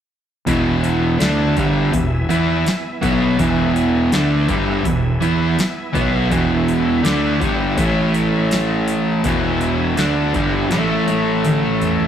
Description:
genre	blues rock power trio and southern rock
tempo	82 BPM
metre	4/4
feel	straight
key	E mixolydian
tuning	A4 = 440 Hz
part	overdriven tonewheel organ	sustained chords	0.5-12.1 s	B3 to G#5	-29 LUFS	right 2 dB	slow rotary speaker, chorus vibrato
part	overdriven electric guitar	riff	0.5-12.1 s	E2 to E4	-17 LUFS	equal	spring reverb
part	fuzz fingered electric bass	bass	0.5-12.1 s	E1 to E2	-22 LUFS	equal	overdrive
part	booming analog drum machine	drums	0.5-12.1 s	hi-hat, kick drum, snare drum, toms	-24 LUFS	left 1 dB	overdrive
room	wet stone room reverb, RT60 1.0 s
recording	rough rehearsal-room recording, tube saturation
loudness	-15 LUFS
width	side -9 dB against mid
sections	0.5-12.1 A section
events	drum fill 10.7-12.1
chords	0.5 E; 7.8 A5; 9.2 E; 10.7 A5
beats	| 0.46 1.19 1.92 2.65 | 3.38 4.12 4.85 5.58 | 6.31 7.04 7.78 8.51 | 9.24 9.98 10.71 11.45

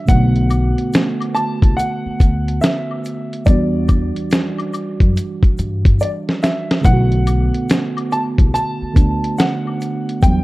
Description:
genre	lo-fi hip hop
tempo	71 BPM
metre	4/4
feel	swing 65% on 16ths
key	unclear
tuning	A4 = 440 Hz
part	dark upright piano	melody	0.0-10.4 s	D5 to A5	-24 LUFS	equal	low-pass filter
part	muted felt-like synth keys	accompaniment	0.0-10.4 s	C3 to F#4	-21 LUFS	right 2 dB	chorus, low-pass filter
part	upright bass	bass	0.1-10.4 s	B1 to G2	-18 LUFS	equal	none
part	dusty soul sampler-style drum kit	drums	0.1-10.4 s	hi-hat, kick drum, snare drum	-14 LUFS	equal	none
part	tube shaker and woodblock	percussion	0.1-10.4 s	none	-33 LUFS	left 6 dB	none
room	studio ambience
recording	dark, warm production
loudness	-14 LUFS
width	side -19 dB against mid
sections	0.0-10.4 A section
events	drum fill 6.0-6.8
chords	0.1 Bm7; 3.5 Em9; 6.8 Bm7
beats	| 0.09 0.93 1.78 2.62 | 3.47 4.31 5.16 6.00 | 6.85 7.69 8.54 9.38 | 10.23

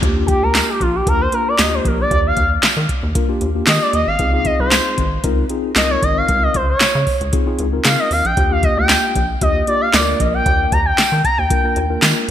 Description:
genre	early-eighties boogie funk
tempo	115 BPM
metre	4/4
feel	straight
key	Eb major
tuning	A4 = 439 Hz
part	mellow tine electric piano	accompaniment	0.0-12.3 s	Bb3 to Bb4	-23 LUFS	left 4 dB	medium stereo tremolo
part	rubbery square bass	bass	0.0-12.3 s	Ab1 to Eb3	-21 LUFS	equal	none
part	electro analog drum machine	drums	0.0-12.3 s	handclaps, hi-hat, kick drum, snare drum	-18 LUFS	equal	overdrive, gated reverb
part	expressive portamento lead	melody	0.3-11.9 s	F4 to Bb5	-18 LUFS	equal	chorus, digital delay
part	tambourine	percussion	0.6-12.2 s	none	-26 LUFS	right 8 dB	none
room	moderate plate reverb, RT60 2.3 s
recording	bright 1980s-style digital production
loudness	-13 LUFS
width	side -10 dB against mid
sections	0.0-12.3 A section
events	analog synth lead solo 0.0-12.3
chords	0.0 Ebmaj9; 4.2 Dbmaj9; 8.4 Ebmaj9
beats	| 0.03 0.55 1.07 1.59 | 2.11 2.64 3.16 3.68 | 4.20 4.72 5.25 5.77 | 6.29 6.81 7.33 7.85 | 8.38 8.90 9.42 9.94 | 10.46 10.98 11.51 12.03

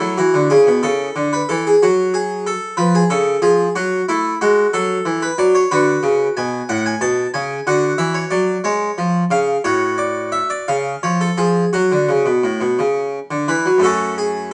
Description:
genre	classical, baroque-style suite movement for harpsichord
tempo	56-63 BPM (dotted quarters)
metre	6/8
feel	rubato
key	F# minor from 5.7 s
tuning	A4 = 441 Hz
part	harpsichord	solo	0.0-14.5 s	F#2 to A5	-17 LUFS	equal	none
room	moderate stone room reverb, RT60 1.0 s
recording	heard from further back in the room, nothing above 10.9 kHz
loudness	-17 LUFS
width	mono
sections	0.0-13.9 A section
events	none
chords	0.0 A; 1.8 N.C.; 2.8 C#; 3.8 F#m; 5.7 Bm; 6.7 Amaj13; 7.7 Dmaj9; 8.7 C#; 9.7 F#m/A; 10.7 C#; 11.7 F#5; 13.9 F#m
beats	0.84 | 1.83 2.80 | 3.77 4.74 | 5.71 6.68 | 7.67 8.66 | 9.66 10.68 | 11.73 12.79 | 13.85

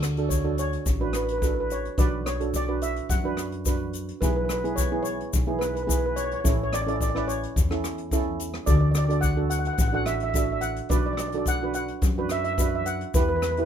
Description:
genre	calypso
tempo	108 BPM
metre	4/4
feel	straight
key	D major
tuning	A4 = 440 Hz
part	steel pan	melody	0.0-13.7 s	A4 to F#5	-29 LUFS	equal	none
part	upright bass	bass	0.0-13.7 s	A1 to F#2	-29 LUFS	left 1 dB	none
part	jazz brush drum kit	drums	0.0-13.7 s	hi-hat, kick drum, rim click	-27 LUFS	left 1 dB	none
part	tube shaker	percussion	0.0-13.6 s	none	-34 LUFS	left 10 dB	none
part	steel pan	accompaniment	0.2-13.7 s	B3 to B4	-30 LUFS	right 5 dB	none
room	light reverb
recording	minimal, uncompressed stereo recording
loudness	-23 LUFS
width	side -9 dB against mid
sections	0.0-13.7 A section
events	none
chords	0.0 Dmaj7; 2.0 Bm; 4.2 E/B; 6.4 Aadd9; 8.7 D; 10.9 Bm; 13.1 Em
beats	0.31 0.87 1.43 | 1.99 2.54 3.10 3.66 | 4.21 4.77 5.33 5.89 | 6.45 7.00 7.56 8.12 | 8.68 9.24 9.79 10.35 | 10.91 11.47 12.03 12.59 | 13.15

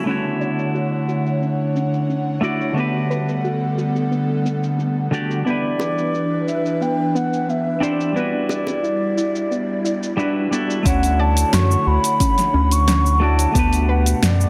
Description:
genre	sunset chillout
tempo	89 BPM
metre	4/4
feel	straight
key	D major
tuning	A4 = 441 Hz
part	semi-hollow electric guitar	accompaniment	0.0-14.5 s	D3 to D5	-25 LUFS	equal	digital delay
part	airy breathy pad	sustained chords	0.0-14.5 s	B2 to F#5	-27 LUFS	equal	chorus
part	soft round pluck	arpeggios	0.1-14.5 s	B3 to D5	-29 LUFS	equal	chorus, digital delay
part	deep house drum kit	drums	0.1-14.5 s	cabasa, hi-hat, snare drum	-27 LUFS	equal	overdrive, low-pass filter on hats, low-pass filter on perc, low-pass filter on snare, low-pass filter on room
part	mellow baroque flute	melody	5.5-14.5 s	D5 to C#6	-25 LUFS	equal	digital delay
part	bongos	percussion	5.8-8.8 s	none	-32 LUFS	equal	none
part	round analog bass	bass	10.9-14.5 s	D2 to F#2	-20 LUFS	equal	none
part	electronic kick drum	drums	10.9-13.7 s	none	-22 LUFS	equal	overdrive
room	wet lush hall reverb, RT60 2.2 s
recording	dense, heavily limited modern master, faint mains hum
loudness	-20 LUFS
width	mono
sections	0.1-10.9 A section; 10.9-14.5 B section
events	filter sweep on synth pluck 0.1-10.9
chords	0.1 Dmaj7; 2.8 Gmaj9/D; 5.5 Cmaj9; 8.2 Em7; 10.9 Dmaj7; 13.6 Gmaj9/D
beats	| 0.07 0.74 1.42 2.09 | 2.77 3.44 4.11 4.79 | 5.46 6.14 6.81 7.49 | 8.16 8.83 9.51 10.18 | 10.86 11.53 12.20 12.88 | 13.55 14.23

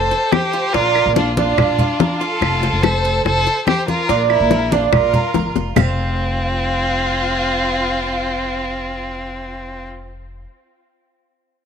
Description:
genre	latin, Cuban son and guajira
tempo	143 BPM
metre	4/4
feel	straight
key	F major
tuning	A4 = 440 Hz
part	rich violin	melody	0.0-9.9 s	C4 to A4	-20 LUFS	left 1 dB	none
part	rich studio violin section	second line	0.0-9.9 s	F4 to C5	-24 LUFS	left 1 dB	none
part	Cuban tres	arpeggios	0.0-10.4 s	D4 to F5	-21 LUFS	right 13 dB	none
part	upright bass	bass	0.0-10.4 s	F1 to Bb1	-23 LUFS	left 1 dB	none
part	bongos	percussion	0.1-5.9 s	none	-20 LUFS	left 14 dB	none
part	congas	percussion	0.1-5.9 s	none	-20 LUFS	left 1 dB	none
part	claves	percussion	0.3-5.9 s	none	-25 LUFS	right 12 dB	none
room	light reverb, small room ambience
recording	1960s-style stereo with parts hard left and right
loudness	-15 LUFS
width	side -7 dB against mid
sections	0.0-5.8 A section; 5.8-9.1 B section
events	drum fill 5.3-5.8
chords	0.0 F; 0.7 Bb; 2.4 F; 4.1 Bb; 5.8 F5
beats	0.33 | 0.74 1.16 1.58 2.00 | 2.42 2.84 3.26 3.67 | 4.09 4.51 4.93 5.35 | 5.77 6.18 6.60 7.02 | 7.44 7.86 8.28 8.69

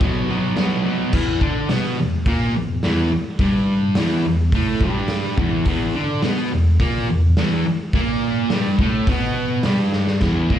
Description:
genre	garage rock duo or trio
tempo	106 BPM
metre	4/4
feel	straight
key	unclear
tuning	A4 = 440 Hz
part	fuzz guitar	riff	0.0-10.6 s	E2 to D4	-18 LUFS	equal	distortion
part	raw garage drum kit	drums	0.0-10.6 s	crash cymbal, hi-hat, kick drum, snare drum	-22 LUFS	equal	none
room	light reverb, studio reverb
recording	live gig heard through the venue's PA, club ambience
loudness	-17 LUFS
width	side -10 dB against mid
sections	0.0-1.1 A section; 1.1-10.2 B section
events	drum fill 9.9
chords	0.0 B5; 1.1 E5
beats	0.01 0.57 | 1.13 1.70 2.26 2.83 | 3.39 3.96 4.53 5.09 | 5.66 6.23 6.80 7.36 | 7.93 8.50 9.07 9.64 | 10.21

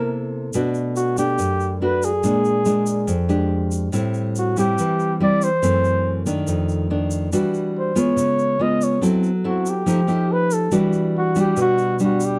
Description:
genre	bossa nova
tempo	141 BPM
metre	4/4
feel	straight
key	E minor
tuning	A4 = 440 Hz
part	mellow flugelhorn	melody	0.0-12.4 s	F#4 to D#5	-23 LUFS	equal	none
part	nylon-string guitar	accompaniment	0.0-12.4 s	E#2 to A4	-22 LUFS	equal	none
part	tube shaker	percussion	0.5-12.4 s	none	-38 LUFS	equal	none
room	light reverb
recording	dark, warm production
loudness	-20 LUFS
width	mono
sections	0.0-12.4 A section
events	none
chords	0.0 C6; 0.5 Bm7; 2.2 A#6; 3.9 Am7; 5.6 F#m7b5; 6.5 F6; 7.3 Em9; 8.2 C#7; 9.0 F#m7b5; 9.9 F9; 10.7 Em9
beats	0.11 | 0.54 0.96 1.38 1.81 | 2.23 2.66 3.08 3.51 | 3.93 4.36 4.78 5.21 | 5.63 6.05 6.48 6.90 | 7.33 7.75 8.18 8.60 | 9.02 9.45 9.87 10.30 | 10.72 11.15 11.57 12.00

